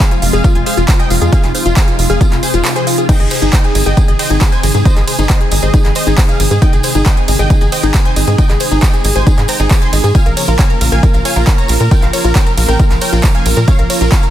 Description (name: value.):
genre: uplifting trance.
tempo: 136 BPM.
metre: 4/4.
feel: straight.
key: unclear.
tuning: A4 = 436 Hz.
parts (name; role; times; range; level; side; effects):
supersaw stab; melody; 0.0-14.3 s; F4 to C6; -19 LUFS; equal; sidechain pumping, digital delay.
analog string pad; sustained chords; 0.0-14.3 s; C3 to F4; -21 LUFS; right 1 dB; ensemble chorus, sidechain pumping.
wide unison pluck; arpeggios; 0.0-14.3 s; Eb4 to Bb5; -20 LUFS; left 4 dB; sidechain pumping, digital delay.
big-room dance drum kit; drums; 0.0-14.3 s; crash cymbal, handclaps, hi-hat, ride cymbal; -19 LUFS; right 2 dB; none.
electronic kick drum; drums; 0.0-14.2 s; none; -10 LUFS; equal; none.
tambourine; percussion; 0.0-14.3 s; none; -27 LUFS; right 2 dB; none.
tight sequencer bass; bass; 0.2-14.1 s; F1 to Bb2; -14 LUFS; equal; tube saturation, sidechain pumping.
room: digital ambience.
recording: dense, heavily limited modern master.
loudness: -9 LUFS.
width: side -12 dB against mid.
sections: 0.0-14.3 A section.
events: kick drops out 2.6-3.1.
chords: 0.0 Fm; 3.1 Ab; 10.1 Bbm.